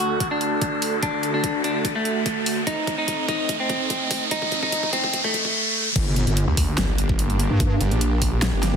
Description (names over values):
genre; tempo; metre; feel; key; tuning
heavy wobble dubstep; 146 BPM; 4/4; half-time; G harmonic minor; A4 = 440 Hz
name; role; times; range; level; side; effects
clean electric guitar; melody; 0.0-5.9 s; A3 to F#4; -25 LUFS; left 1 dB; wide subtle chorus, tape echo
supersaw chords; sustained chords; 0.0-8.8 s; D2 to Eb5; -29 LUFS; right 2 dB; sidechain pumping
big-room dance drum kit; drums; 0.0-8.7 s; crash cymbal, hi-hat, snare drum; -27 LUFS; equal; overdrive, high-pass filter on hats, studio ambience, high-pass filter on cymbals, high-pass filter on snare
riser and sub drop; sound effects; 0.0-7.6 s; none; -26 LUFS; equal; none
electronic kick drum; drums; 0.2-8.3 s; none; -27 LUFS; equal; overdrive, studio ambience
wobble bass; bass; 6.0-8.8 s; G1 to G2; -21 LUFS; equal; chorus, overdrive
snarling distorted saw bass; bass; 6.5-8.7 s; G1 to D2; -22 LUFS; equal; distortion, overdrive
room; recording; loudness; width
light reverb, digital ambience; dense, heavily limited modern master, high-pass filter; -20 LUFS; side -7 dB against mid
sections
0.0-6.0 A section; 6.0-8.8 B section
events
build-up 0.0-6.0; drum fill 0.0-5.5; riser 0.0-6.0; filter sweep on supersaw synth 0.0-6.0; filter sweep 0.0-6.0; drop 6.0-8.8; impact 6.0-7.6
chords
0.0 D; 2.7 Adim; 6.0 Gm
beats
0.20 0.61 | 1.03 1.44 1.85 2.26 | 2.67 3.08 3.49 3.90 | 4.31 4.72 5.13 5.55 | 5.96 6.37 6.78 7.19 | 7.60 8.01 8.42